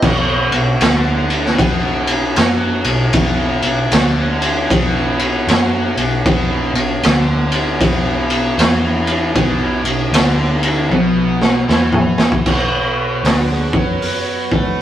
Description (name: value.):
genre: blues rock power trio and southern rock.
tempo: 77 BPM.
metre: 4/4.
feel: swing 63% on 8ths.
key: unclear.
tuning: A4 = 442 Hz.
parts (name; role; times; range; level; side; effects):
tonewheel organ; sustained chords; 0.0-14.8 s; F#3 to F#5; -25 LUFS; right 2 dB; slow rotary speaker.
distorted electric guitar; riff; 0.0-14.8 s; B2 to A4; -21 LUFS; equal; distortion.
vintage muted picked electric bass; bass; 0.0-14.8 s; B1 to A2; -23 LUFS; equal; none.
raw garage drum kit; drums; 0.0-14.7 s; crash cymbal, hi-hat, kick drum, ride cymbal, snare drum, toms; -14 LUFS; equal; none.
room: moderate stone room reverb, RT60 0.9 s.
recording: rough rehearsal-room recording.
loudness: -13 LUFS.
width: side -11 dB against mid.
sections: 0.0-12.5 A section; 12.5-14.8 B section.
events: drum fill 10.9-12.5; tonewheel organ solo 12.5-14.8.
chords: 0.0 B5.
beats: | 0.03 0.81 1.59 2.37 | 3.14 3.92 4.70 5.47 | 6.25 7.03 7.80 8.58 | 9.36 10.14 10.91 11.69 | 12.47 13.25 14.03 14.81.